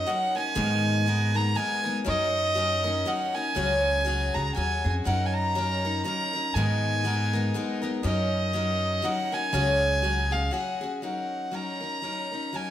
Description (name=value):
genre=acoustic folk duo or small band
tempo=120 BPM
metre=3/4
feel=swing 58% on 8ths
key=F# major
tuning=A4 = 443 Hz
part: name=warm fiddle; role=melody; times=0.0-12.7 s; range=D#5 to A#5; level=-27 LUFS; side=equal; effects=none
part: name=picked steel-string acoustic guitar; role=accompaniment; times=0.0-12.7 s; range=G#2 to A#4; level=-29 LUFS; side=left 2 dB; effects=none
part: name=upright bass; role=bass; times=0.0-10.5 s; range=C#2 to G#2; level=-28 LUFS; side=equal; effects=none
room=wet large studio reverb, RT60 1.3 s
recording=none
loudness=-24 LUFS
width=side -11 dB against mid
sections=0.0-11.0 A section; 11.0-12.7 B section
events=none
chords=0.0 F#6; 0.6 G#madd9; 2.1 F#6; 3.6 C#sus4; 5.1 F#6; 6.5 G#madd9; 8.0 F#6; 9.5 C#sus4; 11.0 F#6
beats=0.07 | 0.56 1.06 1.56 | 2.06 2.56 3.06 | 3.56 4.06 4.56 | 5.06 5.55 6.05 | 6.55 7.05 7.54 | 8.04 8.54 9.04 | 9.53 10.03 10.53 | 11.03 11.53 12.02 | 12.52